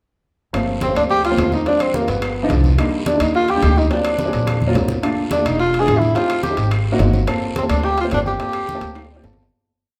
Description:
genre	Afro-Cuban jazz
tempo	214 BPM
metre	4/4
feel	straight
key	G minor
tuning	A4 = 441 Hz
part	dark baby grand piano	accompaniment	0.5-9.5 s	F3 to A5	-25 LUFS	equal	none
part	upright bass	bass	0.5-9.5 s	E1 to Eb2	-22 LUFS	equal	none
part	bongos	percussion	0.5-9.4 s	none	-35 LUFS	equal	none
part	claves	percussion	0.5-9.1 s	none	-38 LUFS	equal	none
part	congas	percussion	0.5-9.5 s	none	-29 LUFS	equal	none
part	guiro	percussion	0.5-9.5 s	none	-39 LUFS	equal	none
part	timbales	percussion	0.5-9.5 s	none	-34 LUFS	equal	none
part	breathy tenor saxophone	melody	0.8-9.2 s	Bb3 to G#4	-22 LUFS	equal	none
part	bell-like tine electric piano	second line	0.8-9.2 s	Bb4 to G#5	-29 LUFS	equal	none
room	wet large studio reverb, RT60 1.3 s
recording	none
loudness	-18 LUFS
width	mono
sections	0.5-9.5 A section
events	drum fill 4.5-5.0, 9.0-9.5; fade-out 7.7-9.5; grand piano fill 9.0-9.5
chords	0.5 Gm11; 1.7 Dm7b5; 2.2 G7; 2.8 Ebmaj9; 3.9 D7alt; 5.0 Bbmaj7#11; 5.6 E7b9; 6.2 Am7b5; 6.7 Ab9; 7.3 Gm11

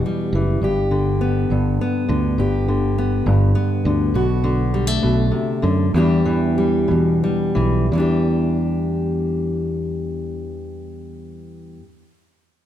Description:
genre	acoustic folk duo or small band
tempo	57-68 BPM (dotted quarters)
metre	6/8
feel	straight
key	E minor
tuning	A4 = 440 Hz
part	fingerpicked steel-string acoustic guitar	accompaniment	0.0-11.9 s	E2 to G4	-20 LUFS	left 1 dB	none
part	fingered electric bass	bass	0.0-11.8 s	F#1 to F#2	-20 LUFS	right 1 dB	none
room	moderate large studio reverb, RT60 1.3 s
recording	minimal, uncompressed stereo recording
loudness	-17 LUFS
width	side -11 dB against mid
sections	0.0-7.9 A section; 7.9-12.1 B section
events	slowing down 4.1-7.9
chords	0.0 Emadd9; 0.6 G; 4.1 Bm7; 5.9 Em7

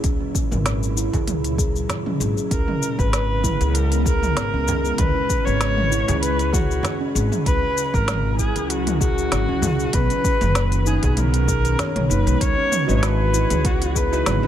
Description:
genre	organic downtempo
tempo	97 BPM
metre	4/4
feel	swing 54% on 16ths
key	C# dorian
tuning	A4 = 442 Hz
part	ethereal airy pad	sustained chords	0.0-14.5 s	A#2 to D#5	-29 LUFS	equal	ensemble chorus, built-in reverb, sidechain pumping, shimmer reverb
part	steel tongue drum	arpeggios	0.0-14.5 s	G#3 to C#5	-27 LUFS	equal	ping-pong delay, shimmer reverb
part	upright bass	bass	0.0-14.5 s	F#1 to C#2	-22 LUFS	equal	sidechain pumping
part	electronic kick drum	drums	0.0-14.1 s	none	-23 LUFS	equal	none
part	organic electronic drum kit	drums	0.0-14.4 s	cabasa, hi-hat, snare drum, toms	-26 LUFS	equal	none
part	frame drum	percussion	1.1-11.9 s	none	-30 LUFS	right 2 dB	none
part	warm kamancheh	melody	2.5-14.5 s	F#4 to C#5	-24 LUFS	left 1 dB	digital delay, shimmer reverb
part	felt-muted upright piano	accompaniment	12.9-14.5 s	F#3 to D#5	-28 LUFS	right 4 dB	sidechain pumping, shimmer reverb
room	light reverb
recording	none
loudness	-18 LUFS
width	side -10 dB against mid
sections	0.0-12.4 A section; 12.4-14.5 B section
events	none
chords	0.0 F#7; 2.5 C#m7; 7.5 F#7; 9.9 Bmaj7; 12.4 C#m11

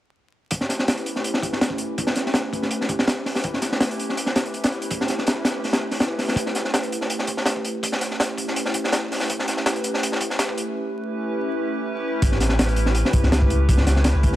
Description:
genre	drum and bass, jungle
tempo	164 BPM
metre	4/4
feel	straight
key	unclear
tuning	A4 = 440 Hz
part	warbly tape-like pad	sustained chords	0.5-14.4 s	A3 to B4	-27 LUFS	equal	chorus, built-in reverb
part	crunchy breakbeat drum kit	drums	0.5-14.4 s	hi-hat, kick drum, snare drum	-22 LUFS	equal	high-pass filter on kick, high-pass filter on hats, high-pass filter on snare, high-pass filter on room
part	saturated sub bass	bass	12.2-14.4 s	A1 to C#2	-19 LUFS	equal	tube saturation
room	light reverb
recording	vinyl crackle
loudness	-20 LUFS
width	side -14 dB against mid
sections	0.5-6.4 A section; 6.4-12.2 B section; 12.2-14.4 C section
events	build-up 6.4-12.2; filter sweep on ambient pad 6.4-12.2; break 10.8-12.2; drop 12.2-14.4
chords	0.5 A9

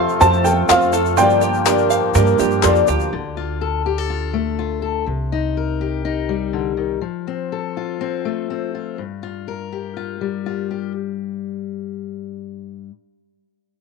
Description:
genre	indie folk with a building arrangement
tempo	123 BPM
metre	4/4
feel	straight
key	G minor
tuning	A4 = 442 Hz
part	dark upright piano	melody	0.0-2.6 s	F5 to C6	-18 LUFS	right 1 dB	none
part	felt-muted upright piano	accompaniment	0.0-3.1 s	F1 to D5	-22 LUFS	right 14 dB	none
part	picked twelve-string acoustic guitar	accompaniment	0.0-3.1 s	G2 to A4	-21 LUFS	left 13 dB	none
part	hand-pumped harmonium	sustained chords	0.0-3.1 s	C3 to G4	-25 LUFS	left 13 dB	none
part	open-back banjo	arpeggios	0.0-3.1 s	F4 to F5	-21 LUFS	right 14 dB	none
part	upright bass	bass	0.0-7.0 s	C2 to G2	-23 LUFS	right 1 dB	none
part	egg shaker	percussion	0.1-3.1 s	none	-31 LUFS	left 16 dB	none
part	group handclap	percussion	0.7-2.7 s	none	-20 LUFS	left 14 dB	none
part	fingerpicked steel-string acoustic guitar	accompaniment	3.1-12.9 s	G2 to Bb4	-24 LUFS	left 12 dB	none
room	light reverb, studio ambience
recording	1960s-style stereo with parts hard left and right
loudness	-17 LUFS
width	side -4 dB against mid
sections	0.0-3.1 A section; 3.1-10.9 B section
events	none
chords	0.0 F; 1.2 Gm7; 3.1 Dm; 5.1 Cmadd9; 7.0 F; 9.0 Gm7

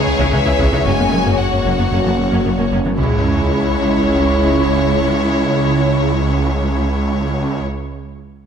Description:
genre	cinematic, hybrid orchestral and electronic film score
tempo	113 BPM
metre	4/4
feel	straight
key	C# dorian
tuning	A4 = 440 Hz
part	clear chamber violin section	melody	0.0-7.6 s	C#5 to G#5	-24 LUFS	left 5 dB	none
part	clear studio violin section	second line	0.0-7.6 s	E4 to C#5	-24 LUFS	left 1 dB	none
part	chorused pulse-width pad	sustained chords	0.0-7.6 s	G#3 to C#5	-21 LUFS	right 1 dB	none
part	warm French horn section	sustained chords	0.0-7.6 s	C#3 to C#4	-24 LUFS	left 4 dB	none
part	snarling distorted saw bass	bass	0.0-7.6 s	F#1 to C#2	-22 LUFS	equal	distortion
part	felt-muted upright piano	texture	0.0-3.0 s	A#3 to B4	-32 LUFS	left 3 dB	none
part	smooth gliding synth bass	riff	0.1-2.9 s	C#2 to F#3	-22 LUFS	left 2 dB	none
part	bright symphonic viola section	accompaniment	0.2-7.6 s	G#3 to E4	-25 LUFS	equal	none
part	rich symphonic cello section	bass	0.2-7.6 s	C#2 to C#3	-23 LUFS	right 3 dB	none
part	taiko ensemble	drums	0.2-4.0 s	none	-24 LUFS	equal	none
part	rich symphonic double bass section	bass	0.3-7.6 s	F#1 to C#2	-23 LUFS	right 4 dB	none
part	sub drop	sound effects	3.0-5.1 s	none	-24 LUFS	equal	none
room	moderate scoring stage reverb, RT60 1.6 s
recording	none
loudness	-14 LUFS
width	side -7 dB against mid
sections	0.0-3.0 A section; 3.0-7.2 B section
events	impact 3.0-5.1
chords	0.0 C#m; 0.9 F#; 3.0 C#m

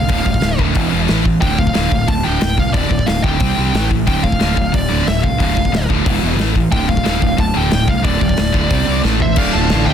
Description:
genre	heavy metal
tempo	181 BPM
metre	4/4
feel	straight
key	D minor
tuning	A4 = 439 Hz
part	high-gain lead guitar	melody	0.0-9.9 s	D5 to A5	-22 LUFS	equal	distortion, digital delay
part	sludgy distorted guitar	riff	0.0-9.9 s	D2 to C4	-20 LUFS	right 11 dB	overdrive
part	tight distorted guitar	riff	0.0-9.9 s	D2 to C4	-21 LUFS	left 14 dB	distortion
part	fuzz fingered electric bass	bass	0.0-9.9 s	D1 to D2	-19 LUFS	left 1 dB	overdrive
part	big rock drum kit	drums	0.1-9.8 s	china cymbal, crash cymbal, hi-hat, kick drum, snare drum, toms	-18 LUFS	left 1 dB	none
part	high-gain lead guitar	second line	9.2-9.9 s	C5 to F5	-26 LUFS	right 3 dB	distortion, digital delay
part	rich studio string section	sustained chords	9.3-9.9 s	F3 to D5	-27 LUFS	left 3 dB	none
part	high-gain distorted guitar	riff	9.4-9.9 s	D2 to F4	-22 LUFS	equal	distortion
room	little or no reverb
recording	dense, heavily limited modern master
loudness	-13 LUFS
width	side -9 dB against mid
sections	0.0-9.4 A section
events	drum fill 9.0-9.4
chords	0.0 Dm; 0.8 E5; 1.1 A5; 1.4 Dm; 3.4 C5; 3.7 A5; 4.1 Dm; 6.1 E5; 6.4 A5; 6.7 Dm; 8.7 C5; 9.0 A5; 9.4 Dm

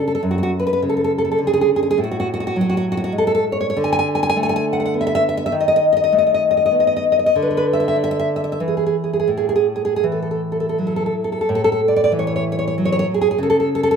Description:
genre	romantic piece for solo classical guitar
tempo	80-106 BPM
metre	3/4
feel	rubato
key	A major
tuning	A4 = 440 Hz
part	nylon-string guitar	solo	0.0-14.0 s	F#2 to G#5	-16 LUFS	equal	none
room	moderate recital hall reverb, RT60 1.5 s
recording	none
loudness	-16 LUFS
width	side -6 dB against mid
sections	0.0-11.5 A section; 11.5-14.0 A section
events	none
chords	0.2 F#5; 2.0 F#m/A; 3.8 Bm7/D; 5.5 B7/D#; 7.3 N.C.; 9.3 A5; 13.4 A/C#

